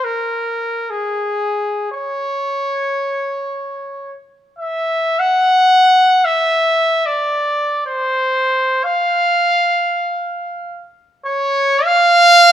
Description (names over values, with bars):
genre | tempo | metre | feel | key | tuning
classical, free, expressive piece for unaccompanied trumpet | free time | none | none | unclear | A4 = 439 Hz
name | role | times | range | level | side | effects
bright trumpet | solo | 0.0-12.5 s | Ab4 to Gb5 | -13 LUFS | equal | none
room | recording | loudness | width
light reverb | close, detailed microphones | -14 LUFS | side -10 dB against mid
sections
0.0-12.5 A section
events
none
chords
none